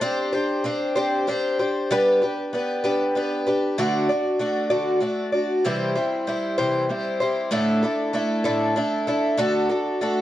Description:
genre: rock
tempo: 64 BPM (dotted quarters)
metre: 6/8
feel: straight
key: D mixolydian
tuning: A4 = 441 Hz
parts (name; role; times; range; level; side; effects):
- picked twelve-string acoustic guitar; solo; 0.0-10.2 s; A2 to D5; -20 LUFS; equal; none
room: light reverb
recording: worn, warbling old tape, cassette tape, warbly pitch drift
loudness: -20 LUFS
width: side -13 dB against mid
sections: 0.0-3.8 A section; 3.8-10.2 B section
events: none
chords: 0.0 Csus2; 1.9 G; 3.8 D; 5.6 C; 7.5 Asus4; 9.4 D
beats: | 0.02 0.95 | 1.89 2.83 | 3.77 4.71 | 5.64 6.58 | 7.52 8.45 | 9.39

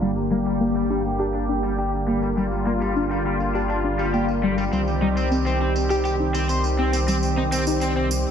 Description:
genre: synthwave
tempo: 102 BPM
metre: 4/4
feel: straight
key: G minor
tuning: A4 = 440 Hz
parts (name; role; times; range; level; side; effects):
- warm analog pad; sustained chords; 0.0-8.3 s; D3 to G4; -24 LUFS; equal; chorus
- soft round pluck; arpeggios; 0.0-7.8 s; G3 to G4; -26 LUFS; left 2 dB; chorus, ping-pong delay
- overdriven electric guitar; riff; 0.0-8.1 s; G3 to C5; -29 LUFS; left 2 dB; wide subtle chorus, low-pass filter, ping-pong delay
- dark detuned saw bass; bass; 0.0-8.3 s; G1 to C2; -26 LUFS; equal; none
- tambourine; drums; 0.0-8.2 s; none; -34 LUFS; right 3 dB; overdrive, low-pass filter on perc, low-pass filter on room
room: wet lush hall reverb, RT60 1.5 s, digital ambience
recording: bright 1980s-style digital production, low-pass filter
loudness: -20 LUFS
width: side -8 dB against mid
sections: 0.0-8.3 A section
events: filter sweep on drum 0.0-8.3; filter sweep 0.0-8.3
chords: 0.0 Gm; 4.7 Cm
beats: | 0.02 0.61 1.20 1.78 | 2.37 2.96 3.55 4.14 | 4.73 5.32 5.90 6.49 | 7.08 7.67 8.26

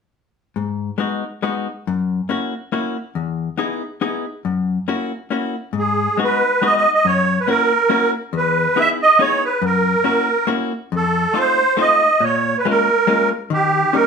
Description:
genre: musette waltz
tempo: 139 BPM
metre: 3/4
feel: swing 54% on 8ths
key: G# minor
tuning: A4 = 439 Hz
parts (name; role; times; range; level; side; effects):
- hollow-body jazz guitar; accompaniment; 0.6-14.1 s; E2 to G#4; -21 LUFS; left 5 dB; none
- musette accordion; melody; 5.8-14.1 s; G4 to E5; -15 LUFS; right 3 dB; none
room: wet studio reverb, RT60 0.7 s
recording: band playing live in one room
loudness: -16 LUFS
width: side -6 dB against mid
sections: 0.6-5.7 A section; 5.7-14.1 B section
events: none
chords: 0.6 G#m7; 1.9 F#7; 3.2 Emaj7; 4.4 F#7; 5.7 G#m7; 7.0 F#7; 8.3 Emaj7; 9.6 F#7; 10.9 F7; 12.2 A#m7; 13.5 D#7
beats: | 0.56 1.00 1.44 | 1.87 2.30 2.73 | 3.16 3.59 4.02 | 4.45 4.88 5.31 | 5.75 6.18 6.62 | 7.05 7.48 7.91 | 8.34 8.77 9.20 | 9.62 10.05 10.49 | 10.92 11.36 11.79 | 12.22 12.65 13.08 | 13.51 13.94

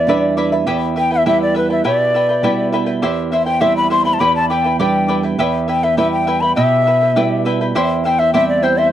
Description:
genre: andean folk, Andean ensemble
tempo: 102 BPM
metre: 2/4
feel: straight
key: E minor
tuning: A4 = 439 Hz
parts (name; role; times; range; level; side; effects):
- hollow quena; melody; 0.0-8.9 s; B4 to C6; -16 LUFS; left 2 dB; tape echo
- charango; accompaniment; 0.0-8.9 s; E4 to G5; -20 LUFS; equal; none
- nylon-string guitar; accompaniment; 0.0-8.9 s; E2 to E4; -18 LUFS; right 3 dB; none
room: light reverb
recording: dry, close 1970s-style studio recording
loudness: -13 LUFS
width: side -11 dB against mid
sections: 0.0-7.7 A section; 7.7-8.9 A section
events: none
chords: 0.0 G/E; 0.7 Em; 3.0 C/E; 4.2 G/E; 5.4 Em; 7.7 C/E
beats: 0.07 | 0.67 1.26 | 1.85 2.44 | 3.03 3.62 | 4.21 4.80 | 5.39 5.98 | 6.57 7.16 | 7.75 8.34

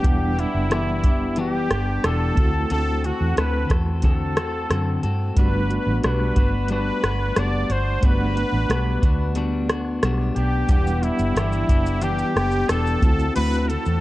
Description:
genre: indie pop, bedroom pop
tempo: 90 BPM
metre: 4/4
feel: straight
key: G major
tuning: A4 = 440 Hz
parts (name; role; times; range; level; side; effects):
- bright trumpet; melody; 0.0-14.0 s; E4 to D5; -26 LUFS; equal; analog chorus, analog delay
- electric guitar at the edge of break-up; accompaniment; 0.0-14.0 s; D3 to A4; -26 LUFS; left 3 dB; wide subtle chorus, warbly pitch drift
- reed electric piano; accompaniment; 0.0-14.0 s; G3 to F#5; -30 LUFS; right 3 dB; fast tremolo, cassette tape
- vintage muted fingered electric bass; bass; 0.0-14.0 s; E1 to G2; -24 LUFS; equal; none
- soft vintage rhythm box; drums; 0.0-14.0 s; hi-hat, kick drum, rim click, shaker; -21 LUFS; equal; none
room: digital ambience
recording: cassette tape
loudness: -19 LUFS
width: side -17 dB against mid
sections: 0.0-14.0 A section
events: none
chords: 0.0 Em7; 2.4 D7; 5.4 Gmaj7; 10.7 Em7; 13.0 D7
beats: | 0.04 0.70 1.37 2.04 | 2.70 3.37 4.04 4.70 | 5.37 6.03 6.70 7.36 | 8.03 8.70 9.36 10.03 | 10.69 11.36 12.02 12.69 | 13.35

